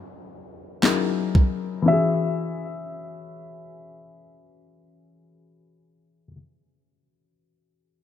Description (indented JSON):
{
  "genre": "contemporary R&B",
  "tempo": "58 BPM",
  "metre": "4/4",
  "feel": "swing 54% on 16ths",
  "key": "E major",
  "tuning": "A4 = 441 Hz",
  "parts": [
    { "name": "clear grand piano", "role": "melody", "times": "0.0-6.3 s", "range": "B4 to E5", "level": "-27 LUFS", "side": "left 1 dB", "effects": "low-pass filter, digital delay" },
    { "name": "felt-muted upright piano", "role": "accompaniment", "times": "0.0-8.0 s", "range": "E3 to C#5", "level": "-23 LUFS", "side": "left 5 dB", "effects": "low-pass filter" },
    { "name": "downlifter", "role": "sound effects", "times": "0.0-1.9 s", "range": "none", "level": "-48 LUFS", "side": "equal", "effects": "none" },
    { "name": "smooth R&B drum kit", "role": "drums", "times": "0.8-1.6 s", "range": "handclaps, kick drum", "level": "-20 LUFS", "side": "right 1 dB", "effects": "none" }
  ],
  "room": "light reverb, digital ambience",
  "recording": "none",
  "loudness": "-20 LUFS",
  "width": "side -10 dB against mid",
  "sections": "0.0-1.9 A section; 1.9-6.0 B section",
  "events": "filter sweep 0.0-1.9",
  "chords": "0.0 F#5; 0.8 F#13; 1.9 E69"
}